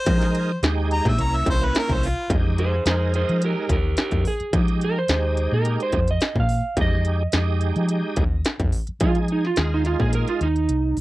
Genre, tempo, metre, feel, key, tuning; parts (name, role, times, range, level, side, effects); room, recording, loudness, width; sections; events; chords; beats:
straight-eighth soul blues; 107 BPM; 4/4; straight; F minor; A4 = 439 Hz
clear harmonica; melody; 0.0-2.3 s; F4 to Bb5; -26 LUFS; left 1 dB; overdrive, tape echo
bright tonewheel organ; accompaniment; 0.1-10.5 s; Ab3 to Bb4; -28 LUFS; right 4 dB; slow rotary speaker, overdrive, chorus vibrato
vintage muted fingered electric bass; bass; 0.1-11.0 s; Bb1 to F3; -22 LUFS; equal
industrial drum kit; drums; 0.1-11.0 s; hi-hat, kick drum, snare drum; -23 LUFS; equal; distortion
electric slide guitar; second line; 2.6-11.0 s; Eb4 to F5; -25 LUFS; right 3 dB
little or no reverb; dry, close 1970s-style studio recording; -19 LUFS; side -18 dB against mid
0.0-2.3 A section; 2.3-11.0 A section
harmonica solo 0.0-2.3; electric slide guitar solo 2.3-11.0; kick and snare drop out 10.1-11.0
0.0 Fm9; 1.2 C7b9; 2.3 Fm9
| 0.06 0.62 1.18 1.74 | 2.30 2.86 3.42 3.98 | 4.54 5.09 5.66 6.21 | 6.77 7.33 7.89 8.45 | 9.01 9.57 10.13 10.69